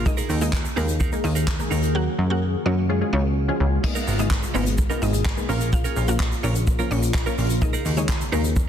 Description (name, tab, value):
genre	dance-pop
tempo	127 BPM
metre	4/4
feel	straight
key	G# dorian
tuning	A4 = 439 Hz
part	glassy FM pad	sustained chords	0.0-8.7 s	B2 to G#4	-30 LUFS	left 2 dB	ensemble chorus, built-in reverb, sidechain pumping
part	direct-recorded clean electric guitar	riff	0.0-8.6 s	B3 to A#4	-31 LUFS	right 9 dB	wide subtle chorus
part	plucky analog bass	bass	0.0-8.7 s	G#1 to F#2	-23 LUFS	equal	sidechain pumping
part	mallet-like synth pluck	melody	0.1-8.5 s	A#3 to F#5	-32 LUFS	left 1 dB	chorus, tape echo
part	punchy chord stab	accompaniment	0.1-8.5 s	E#3 to C#5	-29 LUFS	left 1 dB	chorus
part	vintage brush drum kit	drums	0.1-8.7 s	crash cymbal, handclaps, hi-hat, kick drum, shaker, snare drum	-24 LUFS	equal	none
room	light reverb, small room ambience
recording	dense, heavily limited modern master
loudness	-20 LUFS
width	side -9 dB against mid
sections	0.0-3.8 A section; 3.8-8.7 A section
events	drop 0.0-3.8, 3.8-8.7; silent gap 1.9-3.8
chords	0.1 D#sus4; 1.9 F#; 2.9 C#; 3.8 G#madd9; 5.5 A#m; 7.6 D#sus4